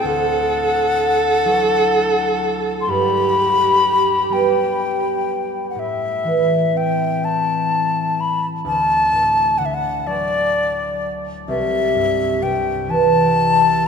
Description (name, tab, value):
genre	celtic folk, Celtic slow air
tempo	42 BPM (dotted quarters)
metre	6/8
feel	rubato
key	unclear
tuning	A4 = 438 Hz
part	bright baroque flute	melody	0.0-13.9 s	D5 to C6	-18 LUFS	left 4 dB	none
part	warm viola	second line	0.0-5.3 s	G4 to A4	-20 LUFS	right 5 dB	none
part	concert harp	accompaniment	0.0-13.9 s	C2 to G4	-21 LUFS	right 2 dB	none
room	wet cathedral reverb, RT60 5.2 s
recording	minimal, uncompressed stereo recording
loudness	-16 LUFS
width	side -6 dB against mid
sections	0.0-5.8 A section; 5.8-13.9 B section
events	none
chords	0.0 Dadd9; 2.9 G; 5.8 Am; 8.7 D; 11.5 C